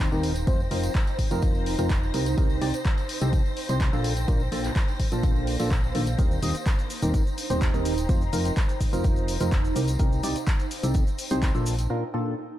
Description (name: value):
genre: piano house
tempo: 126 BPM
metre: 4/4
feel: straight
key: unclear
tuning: A4 = 441 Hz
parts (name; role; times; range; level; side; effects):
- dark studio string section; sustained chords; 0.0-11.9 s; C5 to Bb6; -39 LUFS; equal; sidechain pumping
- percussive organ stab; riff; 0.0-12.3 s; Bb2 to Eb5; -30 LUFS; equal; analog chorus, sidechain pumping
- solid FM bass; bass; 0.0-11.9 s; Eb1 to C2; -28 LUFS; equal; tube saturation, sidechain pumping
- electronic kick drum; drums; 0.0-11.5 s; none; -24 LUFS; equal; none
- punchy analog drum machine; drums; 0.0-11.9 s; handclaps, hi-hat, shaker; -34 LUFS; left 1 dB; none
- tambourine; percussion; 0.0-11.9 s; none; -45 LUFS; right 1 dB; none
- ethereal airy pad; texture; 0.1-11.9 s; Bb3 to Bb5; -34 LUFS; right 3 dB; ensemble chorus, built-in reverb, phaser, sidechain pumping
room: digital ambience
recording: dark, warm production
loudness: -22 LUFS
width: side -13 dB against mid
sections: 0.0-12.6 A section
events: break 11.9-12.6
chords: 0.5 F7sus4; 2.1 Bbmaj7; 6.2 Eb6; 8.1 F7sus4; 9.8 Bbmaj7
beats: 0.00 | 0.47 0.95 1.43 1.90 | 2.38 2.85 3.33 3.81 | 4.28 4.76 5.23 5.71 | 6.19 6.66 7.14 7.62 | 8.09 8.57 9.04 9.52 | 10.00 10.47 10.95 11.43 | 11.90